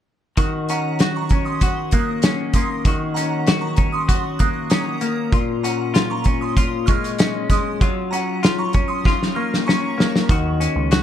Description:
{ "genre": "indie pop, bedroom pop", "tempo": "97 BPM", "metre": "4/4", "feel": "straight", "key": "Eb dorian", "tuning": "A4 = 440 Hz", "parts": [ { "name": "semi-hollow electric guitar", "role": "accompaniment", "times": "0.4-11.0 s", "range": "Bb2 to Gb4", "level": "-22 LUFS", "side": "left 3 dB", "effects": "wide subtle chorus, vibrato effect" }, { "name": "loose indie drum kit", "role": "drums", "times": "0.4-11.0 s", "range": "hi-hat, kick drum, snare drum", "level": "-19 LUFS", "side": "equal", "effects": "none" }, { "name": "shimmering bell with halo", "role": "second line", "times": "0.7-10.1 s", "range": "Gb5 to Gb6", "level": "-28 LUFS", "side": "right 5 dB", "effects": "ensemble chorus, lush chorus, analog delay" }, { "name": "deep dub picked electric bass", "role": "bass", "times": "10.3-11.0 s", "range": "Db2 to Eb2", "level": "-21 LUFS", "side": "right 1 dB", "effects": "none" } ], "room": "light reverb, studio ambience", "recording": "dark, warm production", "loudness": "-17 LUFS", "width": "side -10 dB against mid", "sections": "0.4-10.3 A section", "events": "drum fill 9.0-10.3", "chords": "0.4 Ebm7; 5.3 Bbm7; 7.8 Gbmaj7; 10.3 Ebm7", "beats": "| 0.37 0.99 1.61 2.23 | 2.85 3.47 4.09 4.71 | 5.33 5.95 6.57 7.19 | 7.81 8.43 9.05 9.66 | 10.28 10.90" }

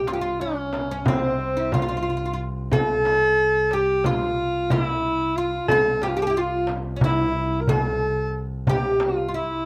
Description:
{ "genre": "Turkish makam ensemble", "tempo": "181 BPM (eighths)", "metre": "9/8", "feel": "straight", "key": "C makam hicaz", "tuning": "A4 = 440 Hz", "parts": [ { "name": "breathy alto saxophone", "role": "melody", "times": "0.0-9.7 s", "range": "C4 to Bb4", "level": "-25 LUFS", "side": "equal", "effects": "none" }, { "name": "oud", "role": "second line", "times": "0.0-9.7 s", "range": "C4 to A4-40c", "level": "-31 LUFS", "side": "equal", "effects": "none" }, { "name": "warm double bass", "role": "drone", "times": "0.0-9.7 s", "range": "C2", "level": "-33 LUFS", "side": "equal", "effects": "none" }, { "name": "darbuka", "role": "percussion", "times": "0.1-9.2 s", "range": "none", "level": "-28 LUFS", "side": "equal", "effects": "none" }, { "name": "frame drum", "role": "percussion", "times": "0.1-9.2 s", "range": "none", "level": "-32 LUFS", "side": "equal", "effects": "none" } ], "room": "moderate small room reverb, RT60 0.6 s", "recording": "close, detailed microphones", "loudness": "-23 LUFS", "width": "mono", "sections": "0.0-9.7 A section", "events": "none", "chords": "none", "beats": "0.07 0.40 0.73 1.06 1.40 1.73 2.06 2.39 | 2.72 3.05 3.38 3.71 4.04 4.37 4.71 5.04 5.37 | 5.70 6.03 6.36 6.69 7.02 7.35 7.68 8.02 8.35 | 8.68 9.01 9.34" }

